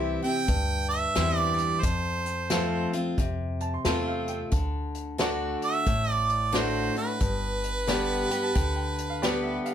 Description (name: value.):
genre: honky-tonk and classic country.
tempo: 89 BPM.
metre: 4/4.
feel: swing 63% on 8ths.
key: C major.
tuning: A4 = 439 Hz.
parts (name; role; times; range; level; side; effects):
bright grand piano; accompaniment; 0.0-9.7 s; E4 to C6; -33 LUFS; right 4 dB; none.
picked steel-string acoustic guitar; accompaniment; 0.0-9.7 s; F2 to G4; -30 LUFS; left 3 dB; none.
upright bass; bass; 0.0-9.6 s; G1 to F2; -32 LUFS; equal; none.
bright harmonica; second line; 0.2-9.6 s; B4 to G5; -28 LUFS; right 4 dB; none.
unplugged drum kit; drums; 0.2-9.7 s; hi-hat, kick drum, snare drum; -30 LUFS; equal; none.
room: moderate studio ambience, RT60 0.5 s.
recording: none.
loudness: -24 LUFS.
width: side -9 dB against mid.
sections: 0.0-9.7 A section.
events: harmonica solo 0.0-9.7; grand piano fill 3.2-4.5, 7.9-9.7.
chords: 0.0 C; 1.8 F; 4.5 D; 7.2 G.